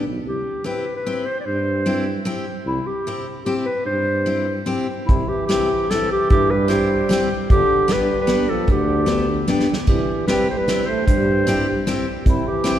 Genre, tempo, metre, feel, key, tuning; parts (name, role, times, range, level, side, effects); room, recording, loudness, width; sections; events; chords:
alpine folk, alpine dance band; 150 BPM; 3/4; straight; C major; A4 = 441 Hz
picked steel-string acoustic guitar; accompaniment; 0.0-12.8 s; B3 to G4; -25 LUFS; left 2 dB
warm tuba; bass; 0.0-12.4 s; G1 to G2; -26 LUFS; right 1 dB
warm clarinet; melody; 0.3-12.8 s; E4 to D5; -22 LUFS; left 1 dB
mellow euphonium; second line; 5.1-12.8 s; C3 to A3; -25 LUFS; right 4 dB
unplugged drum kit; drums; 5.1-12.7 s; hi-hat, kick drum, snare drum, splash cymbal; -22 LUFS; equal
wet cathedral reverb, RT60 4.2 s; recorded in a church or concert hall; -17 LUFS; side -11 dB against mid
0.0-5.1 A section; 5.1-12.8 A section
drum fill 9.5-9.9
0.2 C; 7.5 G; 9.9 C